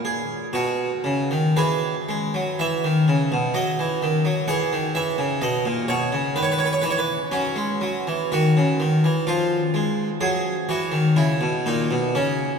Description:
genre	classical, baroque-style suite movement for harpsichord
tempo	62 BPM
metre	3/4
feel	uneven beats, rubato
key	unclear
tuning	A4 = 440 Hz
part	harpsichord	solo	0.0-12.6 s	A#2 to F#5	-20 LUFS	equal	none
room	wet cathedral reverb, RT60 6.0 s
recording	minimal, uncompressed stereo recording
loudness	-20 LUFS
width	side -6 dB against mid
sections	0.0-12.6 A section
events	none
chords	0.0 B; 1.6 E; 3.5 D#m; 4.5 E; 7.3 F#5; 9.3 Fm; 10.2 F#5

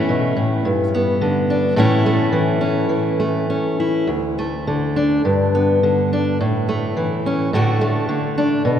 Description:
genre	folk, solo fingerstyle acoustic guitar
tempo	106 BPM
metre	4/4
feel	rubato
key	D major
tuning	A4 = 439 Hz
part	fingerpicked steel-string acoustic guitar	solo	0.0-8.8 s	D2 to F#4	-16 LUFS	equal	none
room	wet cathedral reverb, RT60 4.9 s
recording	recorded in a church or concert hall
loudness	-16 LUFS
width	side -9 dB against mid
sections	0.0-8.8 A section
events	none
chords	0.0 A; 0.7 G; 1.8 A; 4.1 D5; 5.2 G; 6.4 A; 7.5 D/A

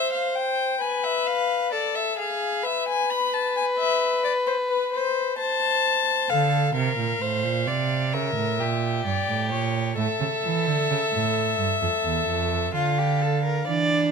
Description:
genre	classical, baroque-style fugue for string quartet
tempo	65 BPM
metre	4/4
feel	straight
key	D minor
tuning	A4 = 440 Hz
part	rich violin	melody	0.0-13.7 s	B4 to B5	-25 LUFS	left 6 dB	none
part	rich violin	second line	0.0-14.1 s	F4 to D5	-26 LUFS	equal	none
part	rich cello	bass	6.3-14.1 s	E2 to E3	-25 LUFS	right 7 dB	none
part	warm viola	accompaniment	13.7-14.1 s	D4	-25 LUFS	right 5 dB	none
room	light reverb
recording	close, detailed microphones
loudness	-22 LUFS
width	side -5 dB against mid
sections	0.0-13.7 A section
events	none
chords	0.0 N.C.; 0.8 G#m6/B; 2.6 E5/B; 4.5 Am; 6.3 Dm; 8.1 C#dim7; 10.0 A; 11.8 Dm

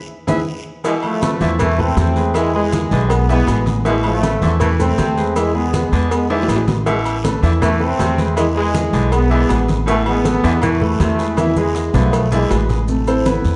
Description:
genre	latin, salsa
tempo	160 BPM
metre	4/4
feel	straight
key	A harmonic minor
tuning	A4 = 439 Hz
part	bright concert grand piano	accompaniment	0.3-13.6 s	C3 to E5	-24 LUFS	equal	none
part	upright bass	bass	0.3-13.6 s	A1 to E2	-21 LUFS	equal	none
part	bongos and cowbell	percussion	0.3-12.9 s	none	-29 LUFS	equal	none
part	congas	percussion	0.3-13.6 s	none	-26 LUFS	equal	none
part	guiro	percussion	0.3-13.6 s	none	-41 LUFS	equal	none
part	maracas	percussion	0.3-13.6 s	none	-42 LUFS	equal	none
part	timbales and agogo bells	percussion	0.3-13.4 s	none	-30 LUFS	equal	none
part	raspy baritone saxophone	second line	0.8-12.6 s	B2 to E3	-29 LUFS	equal	none
part	bright trombone section	melody	0.9-12.7 s	B2 to C4	-22 LUFS	equal	none
room	wet large studio reverb, RT60 1.2 s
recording	dark, warm production, nothing above 10.7 kHz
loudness	-17 LUFS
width	mono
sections	0.8-12.9 A section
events	drum fill 0.0-0.8, 6.3-6.9, 11.4-12.9; band accent 0.0-0.8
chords	0.0 E; 0.8 Amadd9; 2.3 E7; 12.9 Amadd9

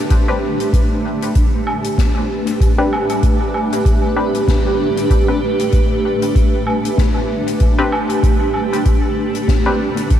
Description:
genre	ambient dub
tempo	96 BPM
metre	4/4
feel	swing 58% on 16ths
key	unclear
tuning	A4 = 440 Hz
part	granular cloud pad	sustained chords	0.0-10.2 s	A3 to B4	-18 LUFS	right 1 dB	built-in reverb
part	electronic kick drum	drums	0.1-10.2 s	none	-15 LUFS	equal	studio ambience
part	soft-mallet drum kit	drums	0.1-10.2 s	hi-hat, snare drum, woodblock	-26 LUFS	left 1 dB	studio ambience, dub echo
part	filtered dub chord stab	stabs	0.3-9.8 s	C4 to B4	-24 LUFS	left 2 dB	chorus, vintage 12-bit sampler grit, dub echo
room	moderate huge ambient reverb, RT60 8.0 s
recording	dreamy mix soaked in reverb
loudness	-14 LUFS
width	side -10 dB against mid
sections	0.1-10.2 A section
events	none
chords	0.1 Am11

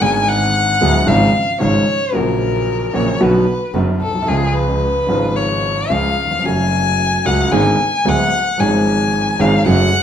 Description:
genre	tango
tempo	112 BPM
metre	4/4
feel	rubato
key	unclear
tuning	A4 = 439 Hz
part	rich violin	second line	0.0-10.0 s	G#4 to G#5	-17 LUFS	left 3 dB	none
part	warm grand piano	accompaniment	0.0-9.9 s	D1 to G#4	-17 LUFS	right 1 dB	none
part	clear double bass	bass	0.0-9.9 s	F#1 to D2	-21 LUFS	right 1 dB	none
room	wet large studio reverb, RT60 1.2 s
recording	minimal, uncompressed stereo recording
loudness	-13 LUFS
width	side -9 dB against mid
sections	0.0-10.0 A section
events	violin solo 0.0-10.0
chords	0.0 G#dim; 1.1 C#/G#; 2.1 F#/A#; 3.2 Bm; 4.3 C#; 6.4 F#m; 7.5 G#dim; 8.6 C#/G#

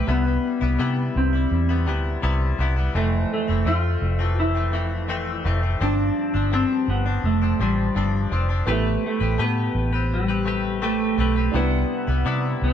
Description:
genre	indie pop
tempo	84 BPM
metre	4/4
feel	straight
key	unclear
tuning	A4 = 439 Hz
part	clean lap steel guitar	melody	0.0-12.7 s	G3 to F4	-25 LUFS	equal	lush chorus
part	direct-recorded clean electric guitar	accompaniment	0.0-12.7 s	F2 to B4	-27 LUFS	left 4 dB	lush chorus, warbly pitch drift
part	vintage muted fingered electric bass	bass	0.1-12.7 s	F1 to C3	-22 LUFS	equal	none
part	warm upright piano	accompaniment	8.7-12.7 s	B3 to B4	-33 LUFS	right 4 dB	cassette tape
room	light reverb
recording	lossy compression artefacts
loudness	-20 LUFS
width	side -9 dB against mid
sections	0.0-12.7 A section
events	none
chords	0.1 Cmaj7; 2.9 Fmaj7; 5.8 G7sus4; 8.7 Am9; 11.5 Cmaj7

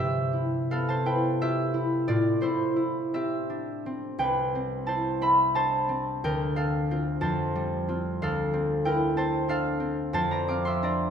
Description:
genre	classical, solo harp piece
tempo	54-63 BPM (dotted quarters)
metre	6/8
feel	rubato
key	C major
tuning	A4 = 442 Hz
part	concert harp	solo	0.0-11.1 s	C2 to D6	-24 LUFS	equal	none
room	moderate concert hall reverb, RT60 2.2 s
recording	minimal, uncompressed stereo recording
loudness	-24 LUFS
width	side -7 dB against mid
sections	0.0-11.1 A section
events	none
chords	0.0 Cmaj7; 2.1 Am7; 4.2 Cmaj7; 6.2 Dm7; 7.2 Fadd9; 8.2 Dm11; 10.1 F69

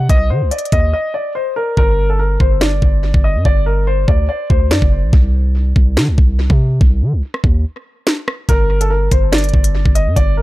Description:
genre	hip hop, drill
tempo	143 BPM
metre	4/4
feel	half-time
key	G harmonic minor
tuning	A4 = 440 Hz
part	dark baby grand piano	melody	0.0-5.1, 8.5-10.4 s	A4 to Eb5	-19 LUFS	left 2 dB	tape echo
part	long sustained 808-style bass	bass	0.0-10.4 s	F#1 to Eb3	-15 LUFS	equal	none
part	drill drum kit	drums	0.1-10.3 s	hi-hat, kick drum, rim click, snare drum	-14 LUFS	equal	none
room	little or no reverb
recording	echo-heavy mix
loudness	-12 LUFS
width	side -17 dB against mid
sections	0.0-10.4 A section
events	break 0.9-1.8, 7.6-8.5; hi-hats muted 1.8-8.5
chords	0.0 Cm; 1.8 G5; 5.1 Cm; 8.5 Gm

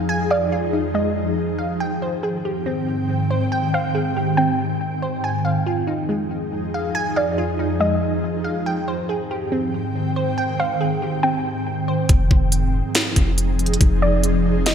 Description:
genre	hip hop, atmospheric cloud-rap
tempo	140 BPM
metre	4/4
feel	half-time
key	unclear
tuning	A4 = 439 Hz
part	ethereal airy pad	sustained chords	0.0-14.7 s	F2 to G5	-22 LUFS	equal	ensemble chorus, built-in reverb, tremolo, sidechain pumping
part	glassy wavetable pluck	arpeggios	0.0-12.1 s	Ab3 to Ab5	-25 LUFS	right 1 dB	chorus, ping-pong delay
part	soft round pluck	melody	0.3-14.7 s	D5 to G5	-24 LUFS	equal	chorus, ping-pong delay
part	soft 808-style bass	bass	12.1-14.7 s	F1	-20 LUFS	equal	none
part	trap drum kit	drums	12.1-14.7 s	hi-hat, kick drum, snare drum	-16 LUFS	equal	gated reverb
room	moderate lush hall reverb, RT60 1.9 s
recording	bright 1980s-style digital production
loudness	-18 LUFS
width	side -8 dB against mid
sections	0.0-12.1 A section; 12.1-14.7 B section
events	none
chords	0.0 Fm7; 1.8 Abmaj7; 5.2 Fm7; 8.7 Abmaj7; 12.1 Fm7

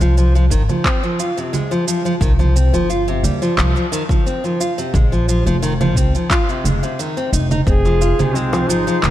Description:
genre	organic downtempo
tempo	88 BPM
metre	4/4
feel	straight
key	F minor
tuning	A4 = 436 Hz
part	nylon-string guitar	arpeggios	0.0-9.1 s	C3 to F4	-19 LUFS	equal	tape echo
part	upright bass	bass	0.0-9.1 s	F1 to Eb2	-16 LUFS	equal	none
part	electronic shaker, congas and handclaps	drums	0.0-9.1 s	none	-22 LUFS	right 3 dB	none
part	electronic kick drum	drums	0.5-7.8 s	none	-17 LUFS	equal	none
part	warm duduk	melody	7.7-9.1 s	C4 to Ab4	-20 LUFS	right 1 dB	tape echo
part	drifting glass-harmonics texture	texture	8.2-9.1 s	Eb4 to C5	-27 LUFS	left 1 dB	chorus, built-in reverb
part	darbuka	percussion	7.9-8.7 s	none	-27 LUFS	left 3 dB	none
room	light reverb, small room reverb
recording	dark, warm production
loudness	-14 LUFS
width	side -13 dB against mid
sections	0.0-9.1 A section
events	none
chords	0.0 Fm; 2.2 Cm; 4.9 Bbsus2; 7.7 Fm7

